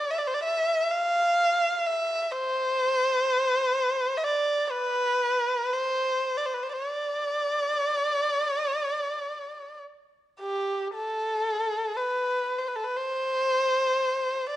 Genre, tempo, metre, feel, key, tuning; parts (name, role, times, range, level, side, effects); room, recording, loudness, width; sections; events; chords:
caucasian folk, Caucasian lament; 54-64 BPM; 4/4; rubato; D dorian; A4 = 440 Hz
warm erhu; solo; 0.0-14.6 s; G4 to F5; -24 LUFS; equal
moderate scoring stage reverb, RT60 1.6 s; nothing above 10.6 kHz; -24 LUFS; side -13 dB against mid
0.0-10.9 A section; 10.9-14.6 B section